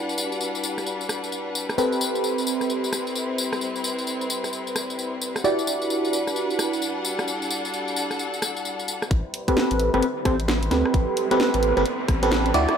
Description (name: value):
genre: UK garage, two-step garage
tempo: 131 BPM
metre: 4/4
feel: swing 62% on 16ths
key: A minor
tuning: A4 = 436 Hz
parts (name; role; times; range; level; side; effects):
- warm symphonic violin section; sustained chords; 0.0-12.8 s; G3 to F#5; -29 LUFS; left 1 dB; sidechain pumping, low-pass filter
- FM electric piano; stabs; 0.0-12.8 s; C4 to D5; -24 LUFS; right 1 dB; chorus, phaser, low-pass filter, tape echo
- garage drum kit; drums; 0.1-12.8 s; hi-hat, rim click, snare drum, tambourine; -28 LUFS; left 1 dB; studio reverb
- saturated sub bass; bass; 9.1-12.7 s; G1 to D2; -26 LUFS; equal; none
- electronic kick drum; drums; 9.1-12.2 s; none; -23 LUFS; equal; studio reverb
- riser; sound effects; 10.1-12.8 s; none; -34 LUFS; right 1 dB; none
room: light reverb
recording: none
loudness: -22 LUFS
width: side -7 dB against mid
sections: 0.0-9.1 A section; 9.1-12.8 B section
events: build-up 9.1-12.8; filter sweep on FM electric piano 9.1-12.8; filter sweep on violin section 9.1-12.8; riser 10.1-12.8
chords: 0.0 Em9; 1.8 Am9; 5.4 Em9; 9.1 Am9